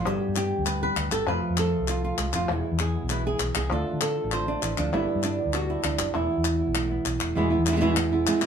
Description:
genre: flamenco.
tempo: 197 BPM.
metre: 4/4.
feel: straight.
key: unclear.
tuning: A4 = 440 Hz.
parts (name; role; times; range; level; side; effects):
flamenco guitar; melody; 0.0-8.5 s; E2 to C5; -26 LUFS; right 2 dB; none.
flamenco guitar; stabs; 0.0-8.5 s; B2 to G4; -36 LUFS; right 1 dB; none.
hollow-body short-scale fingered electric bass; bass; 0.1-8.2 s; E1 to D3; -29 LUFS; left 1 dB; none.
palmas hand claps; percussion; 0.1-8.5 s; none; -30 LUFS; left 5 dB; none.
room: wet studio reverb, RT60 0.5 s.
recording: band playing live in one room.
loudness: -23 LUFS.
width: side -7 dB against mid.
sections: 0.0-7.4 A section; 7.4-8.5 B section.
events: none.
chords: 0.1 G; 1.3 F; 2.5 E; 3.7 Dm; 4.9 G; 6.1 Esus4; 7.4 E.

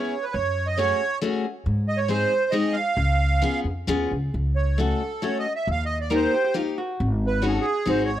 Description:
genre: musette waltz.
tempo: 136 BPM.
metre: 3/4.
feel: rubato.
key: unclear.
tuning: A4 = 440 Hz.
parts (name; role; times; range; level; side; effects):
accordion; melody; 0.0-8.2 s; G#4 to E#5; -24 LUFS; right 4 dB; light tremolo tuning.
picked steel-string acoustic guitar; accompaniment; 0.0-8.1 s; G#3 to A#4; -26 LUFS; left 3 dB; none.
upright bass; bass; 0.3-8.2 s; G#1 to G#2; -24 LUFS; equal; none.
vintage hollow-body jazz guitar; second line; 6.1-7.1 s; E#4 to A#4; -29 LUFS; right 1 dB; none.
room: little or no reverb.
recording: dry, close 1970s-style studio recording.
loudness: -21 LUFS.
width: side -12 dB against mid.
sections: 0.0-8.2 A section.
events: none.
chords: 0.3 F#madd9; 1.7 G#; 3.0 C#7; 4.3 F#m/C#; 5.7 D#; 7.0 G#7sus4.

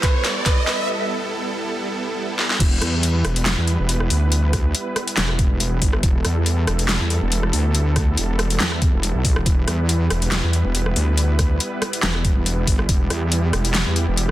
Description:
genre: heavy wobble dubstep.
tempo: 140 BPM.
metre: 4/4.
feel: swing 54% on 16ths, half-time.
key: E minor.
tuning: A4 = 444 Hz.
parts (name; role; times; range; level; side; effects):
clear grand piano; melody; 0.0-0.9 s; B4; -29 LUFS; right 4 dB; vintage 12-bit sampler grit, tape echo.
supersaw chords; sustained chords; 0.0-14.3 s; G3 to B4; -27 LUFS; right 2 dB; sidechain pumping, low-pass filter.
dubstep drum kit; drums; 0.0-14.3 s; crash cymbal, handclaps, hi-hat, rim click, snare drum; -22 LUFS; left 1 dB; high-pass filter on snare, high-pass filter on hats, high-pass filter on cymbals.
electronic kick drum; drums; 0.0-13.0 s; none; -18 LUFS; equal; none.
riser; sound effects; 0.0-0.9 s; none; -25 LUFS; right 1 dB; none.
wobble bass; bass; 2.6-14.3 s; E1 to E2; -20 LUFS; equal; chorus, overdrive.
room: digital ambience.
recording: dense, heavily limited modern master, faint mains hum.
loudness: -17 LUFS.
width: side -14 dB against mid.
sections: 0.0-2.6 A section; 2.6-14.3 B section.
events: build-up 0.0-2.6; drum fill 0.0-0.9, 2.4; riser 0.0-0.9; break 0.9-2.6; drop 2.6-14.3.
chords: 0.0 Em.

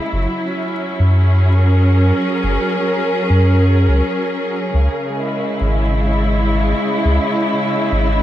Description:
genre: ambient dub.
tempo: 104 BPM.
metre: 4/4.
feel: swing 54% on 16ths.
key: unclear.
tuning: A4 = 440 Hz.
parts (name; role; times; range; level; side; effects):
rich studio string section; sustained chords; 0.0-8.2 s; C#3 to A#4; -17 LUFS; equal; none.
soft dub sub bass; bass; 0.1-8.2 s; F#1 to F#2; -14 LUFS; equal; none.
room: moderate plate reverb, RT60 3.3 s.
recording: dreamy mix soaked in reverb, vinyl crackle.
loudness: -14 LUFS.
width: side -13 dB against mid.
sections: 0.0-8.2 A section.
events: none.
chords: 0.1 F#7; 4.7 C#m.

